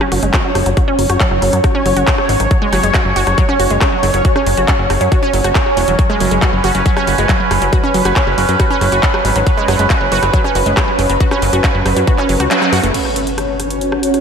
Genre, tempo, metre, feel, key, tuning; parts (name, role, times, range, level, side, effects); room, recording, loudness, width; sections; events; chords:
psychedelic trance; 138 BPM; 4/4; straight; A4 = 440 Hz
bubbling stepped-filter texture; sustained chords; 0.0-14.2 s; C#4 to C#5; -16 LUFS; right 2 dB; chorus, built-in reverb, sidechain pumping
wide unison pluck; riff; 0.0-12.9 s; F#3 to F#4; -18 LUFS; equal; auto-pan, sidechain pumping, analog delay
big-room dance drum kit; drums; 0.0-14.2 s; crash cymbal, handclaps, hi-hat, rim click; -20 LUFS; equal; small room ambience
fat analog bass; bass; 0.1-12.9 s; E1 to F#2; -17 LUFS; equal
electronic kick drum; drums; 0.3-12.2 s; -15 LUFS; equal; small room ambience
impact; sound effects; 12.9-14.2 s; -25 LUFS; equal
granular cloud pad; texture; 13.4-14.2 s; F#4 to C#5; -25 LUFS; left 3 dB; built-in reverb, analog chorus, sidechain pumping
moderate lush hall reverb, RT60 1.9 s, digital ambience; dreamy mix soaked in reverb; -11 LUFS; side -6 dB against mid
0.0-12.9 A section; 12.9-14.2 B section
kick drops out 12.5-12.9; band accent 12.5; impact 12.9-14.2
0.0 F#5